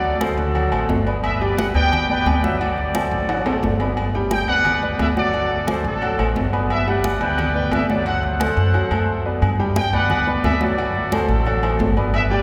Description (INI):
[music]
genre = latin, salsa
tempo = 176 BPM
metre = 4/4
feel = straight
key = G major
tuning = A4 = 442 Hz
[part]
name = bright trumpet section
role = melody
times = 0.0-12.4 s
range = C4 to G5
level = -25 LUFS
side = equal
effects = none
[part]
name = clear grand piano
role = accompaniment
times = 0.0-12.4 s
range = F#3 to G5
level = -26 LUFS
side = equal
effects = none
[part]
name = upright bass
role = bass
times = 0.0-12.4 s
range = G1 to G2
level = -25 LUFS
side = equal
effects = none
[part]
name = congas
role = percussion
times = 0.0-12.4 s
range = none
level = -30 LUFS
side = equal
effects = none
[part]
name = timbales and agogo bells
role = percussion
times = 0.2-12.3 s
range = none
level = -28 LUFS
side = equal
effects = none
[sound]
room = wet cathedral reverb, RT60 6.3 s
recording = recorded in a church or concert hall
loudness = -20 LUFS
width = mono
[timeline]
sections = 0.0-9.4 A section; 9.4-12.4 A section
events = drum fill 3.3-4.0; break 9.1-9.4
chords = 0.0 D7; 1.2 Gmaj7; 2.6 D7; 4.0 Gmaj7; 5.3 D7; 6.7 Gmaj7; 8.1 D7; 9.4 Gmaj7; 10.8 D7